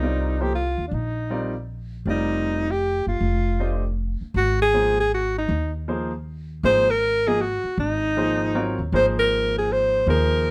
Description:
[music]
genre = modal jazz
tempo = 157 BPM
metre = 3/4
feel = swing 64% on 8ths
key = F mixolydian, Ab mixolydian from 4.4 s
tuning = A4 = 440 Hz
[part]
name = warm alto saxophone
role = melody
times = 0.0-10.5 s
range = D4 to C5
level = -24 LUFS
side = equal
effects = none
[part]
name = clear baby grand piano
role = accompaniment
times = 0.0-10.5 s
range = F3 to Eb5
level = -29 LUFS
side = equal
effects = none
[part]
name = upright bass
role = bass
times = 0.0-10.5 s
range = F1 to Eb2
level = -28 LUFS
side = equal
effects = none
[sound]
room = light reverb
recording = none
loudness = -23 LUFS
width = mono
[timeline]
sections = 0.0-4.4 A section; 4.4-10.5 B section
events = none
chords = 0.0 F7sus4; 4.4 Abadd9; 6.6 N.C.; 8.9 Abadd9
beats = 0.16 0.54 | 0.92 1.31 1.69 | 2.07 2.45 2.83 | 3.21 3.59 3.98 | 4.36 4.74 5.12 | 5.50 5.88 6.26 | 6.64 7.02 7.40 | 7.78 8.17 8.55 | 8.93 9.31 9.69 | 10.07 10.46

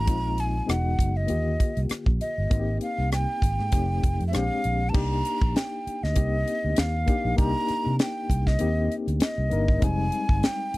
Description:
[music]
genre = lush 1970s-style soul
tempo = 98 BPM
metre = 4/4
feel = swing 54% on 16ths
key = unclear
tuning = A4 = 444 Hz
[part]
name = breathy hollow jazz flute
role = melody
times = 0.0-10.8 s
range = Eb5 to Bb5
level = -30 LUFS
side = right 1 dB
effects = none
[part]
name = reed electric piano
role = accompaniment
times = 0.0-10.8 s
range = D3 to Bb4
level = -30 LUFS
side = left 4 dB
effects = fast tremolo
[part]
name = fingered electric bass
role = bass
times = 0.0-10.8 s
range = E1 to C3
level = -26 LUFS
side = equal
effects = none
[part]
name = tight funk drum kit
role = drums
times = 0.1-10.8 s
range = crash cymbal, hi-hat, kick drum, rim click, snare drum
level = -24 LUFS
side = equal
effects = none
[sound]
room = little or no reverb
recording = dry, close 1970s-style studio recording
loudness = -22 LUFS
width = side -19 dB against mid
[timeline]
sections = 0.0-4.9 A section; 4.9-10.8 B section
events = none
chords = 0.1 Bb7sus4; 0.7 Emaj9; 1.3 Ebmaj9; 2.5 Abmaj7; 3.7 F7; 4.3 Bb13; 4.9 Cm9; 9.8 Fm9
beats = | 0.07 0.69 1.29 1.90 | 2.51 3.12 3.73 4.34 | 4.95 5.56 6.17 6.78 | 7.38 7.99 8.60 9.21 | 9.82 10.43

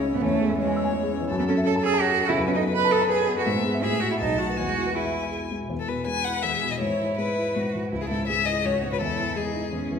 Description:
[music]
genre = quick classical-period movement for piano trio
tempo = 165 BPM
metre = 3/4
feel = straight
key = E major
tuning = A4 = 441 Hz
[part]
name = warm violin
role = melody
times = 0.0-9.9 s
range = G#4 to A5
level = -28 LUFS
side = left 5 dB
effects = none
[part]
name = dark concert grand piano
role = accompaniment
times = 0.0-10.0 s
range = B1 to E6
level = -26 LUFS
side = left 1 dB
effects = none
[part]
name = rich cello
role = second line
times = 0.1-10.0 s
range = G#3 to B4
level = -26 LUFS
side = right 4 dB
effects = none
[sound]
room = wet recital hall reverb, RT60 1.7 s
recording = recorded in a church or concert hall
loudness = -22 LUFS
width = side -6 dB against mid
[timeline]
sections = 0.0-5.7 A section; 5.7-10.0 A section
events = none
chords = 0.2 C#m/E; 1.3 F#m7; 2.4 B7/F#; 3.5 E/G#; 3.8 F#m7/A; 4.2 B7; 4.6 E; 6.8 E/G#; 7.9 C#m; 9.0 C#m/E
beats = | 0.23 0.59 0.95 | 1.30 1.66 2.02 | 2.38 2.74 3.10 | 3.46 3.83 4.20 | 4.58 4.96 5.33 | 5.71 6.08 6.44 | 6.81 7.17 7.54 | 7.91 8.27 8.63 | 8.99 9.35 9.72

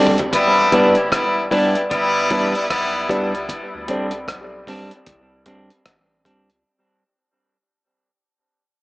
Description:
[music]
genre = dub reggae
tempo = 76 BPM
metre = 4/4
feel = swing 61% on 16ths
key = E minor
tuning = A4 = 441 Hz
[part]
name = semi-hollow electric guitar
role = accompaniment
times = 0.0-6.5 s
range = G3 to D4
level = -21 LUFS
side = right 1 dB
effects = dub echo
[part]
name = dark upright piano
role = stabs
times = 0.0-4.1 s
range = E4 to D5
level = -22 LUFS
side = left 1 dB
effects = dub echo
[part]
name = dusty soul sampler-style drum kit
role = drums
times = 0.1-6.6 s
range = hi-hat, kick drum, rim click, toms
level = -24 LUFS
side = equal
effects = none
[part]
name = clear horn section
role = second line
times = 0.3-3.3 s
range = G3 to G4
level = -18 LUFS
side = left 1 dB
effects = dub echo
[part]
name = soft dub sub bass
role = bass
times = 0.6-6.6 s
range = E1 to D2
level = -42 LUFS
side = equal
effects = none
[sound]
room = wet spring reverb, RT60 2.5 s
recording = small speaker sound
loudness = -15 LUFS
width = side -21 dB against mid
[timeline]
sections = 0.3-6.7 A section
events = break 0.0-0.3, 3.5-6.7; drum fill 0.0-0.3; fade-out 0.3-6.7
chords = 0.3 Em7; 3.5 D7sus4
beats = | 0.33 1.12 1.91 2.70 | 3.49 4.28 5.07 5.86

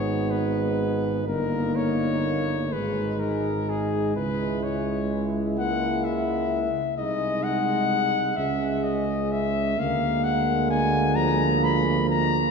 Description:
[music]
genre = classical, hymn-like piece for brass band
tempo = 42 BPM (dotted quarters)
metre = 6/8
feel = rubato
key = G# minor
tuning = A4 = 440 Hz
[part]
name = warm cornet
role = melody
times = 0.0-12.5 s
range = G#4 to Cb6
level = -27 LUFS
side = left 4 dB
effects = none
[part]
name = warm French horn section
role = second line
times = 0.0-12.5 s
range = Bb3 to E4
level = -30 LUFS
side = right 7 dB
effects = none
[part]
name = clear trombone section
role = accompaniment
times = 0.0-12.5 s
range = G#3 to B3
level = -32 LUFS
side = left 1 dB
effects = none
[part]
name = mellow euphonium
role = accompaniment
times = 0.0-12.5 s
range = F3 to A#3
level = -30 LUFS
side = right 1 dB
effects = none
[part]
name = mellow tuba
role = bass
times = 0.0-12.5 s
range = G1 to D2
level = -29 LUFS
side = equal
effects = none
[sound]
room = wet church reverb, RT60 2.7 s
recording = heard from further back in the room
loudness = -22 LUFS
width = side -5 dB against mid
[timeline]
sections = 0.0-12.5 A section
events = none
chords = 0.0 G#m; 1.3 D#7/G; 2.7 G#5; 4.2 C#m; 7.0 G#7/B#; 8.4 C#5; 9.8 Bb7/D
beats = | 1.27 2.72 | 4.16 5.59 | 6.97 8.38 | 9.78 11.16

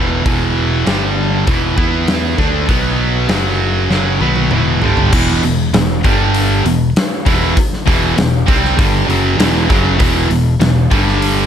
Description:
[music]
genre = hard rock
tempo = 99 BPM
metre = 4/4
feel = straight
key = E minor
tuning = A4 = 440 Hz
[part]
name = cranked stack guitar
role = riff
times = 0.0-11.5 s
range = E2 to E4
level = -17 LUFS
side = right 10 dB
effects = overdrive
[part]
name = high-gain distorted guitar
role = riff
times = 0.0-11.5 s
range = E2 to E4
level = -18 LUFS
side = left 10 dB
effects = distortion
[part]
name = modern bright picked electric bass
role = bass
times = 0.0-11.5 s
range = E1 to E2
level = -18 LUFS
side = equal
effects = none
[part]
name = huge arena drum kit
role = drums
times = 0.3-11.4 s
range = crash cymbal, hi-hat, kick drum, snare drum, toms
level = -16 LUFS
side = left 1 dB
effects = none
[sound]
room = light reverb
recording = none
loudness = -11 LUFS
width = side -9 dB against mid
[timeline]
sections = 0.0-5.1 A section; 5.1-11.5 B section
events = drum fill 3.9-5.1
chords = 0.0 E5; 0.9 G5; 1.5 E5; 2.7 B5; 3.3 F#5; 3.9 Em; 5.1 E5; 6.0 G5; 6.6 Em; 10.9 G5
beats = | 0.25 0.86 1.47 2.08 | 2.69 3.30 3.91 4.51 | 5.12 5.73 6.34 6.95 | 7.56 8.17 8.77 9.38 | 9.99 10.60 11.21

